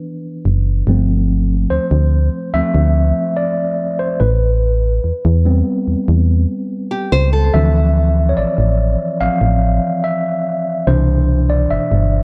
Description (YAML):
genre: R&B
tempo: 72 BPM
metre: 4/4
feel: straight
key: A minor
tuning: A4 = 440 Hz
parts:
  - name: mellow tine electric piano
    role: accompaniment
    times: 0.0-12.2 s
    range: B2 to F5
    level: -20 LUFS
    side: equal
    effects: none
  - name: solid FM bass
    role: bass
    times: 0.5-12.2 s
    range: F#1 to E2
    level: -16 LUFS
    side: equal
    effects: none
  - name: nylon-string guitar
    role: arpeggios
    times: 6.9-7.7 s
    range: G4 to C5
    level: -23 LUFS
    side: equal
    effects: tape echo
room: light reverb, small room ambience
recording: worn, warbling old tape, cassette tape, warbly pitch drift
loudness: -16 LUFS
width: mono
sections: 0.0-12.2 A section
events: tine electric piano solo 0.0-12.2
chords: 0.0 Cmaj7 (rootless); 0.9 G7sus4; 4.2 Am9; 7.5 Dm9; 10.9 Cmaj7